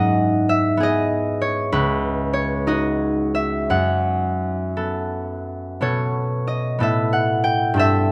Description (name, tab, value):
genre	classical, solo harp piece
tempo	56-67 BPM (dotted quarters)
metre	6/8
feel	rubato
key	unclear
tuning	A4 = 440 Hz
part	concert harp	solo	0.0-8.1 s	C#2 to G5	-21 LUFS	equal	none
room	light reverb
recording	close, detailed microphones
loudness	-21 LUFS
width	mono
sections	0.0-8.1 A section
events	none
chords	0.0 G#m7; 1.7 C#9sus4; 3.7 F#m11; 5.8 B11; 6.8 Asus2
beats	0.81 | 1.72 2.66 | 3.70 4.76 | 5.81 6.80 | 7.77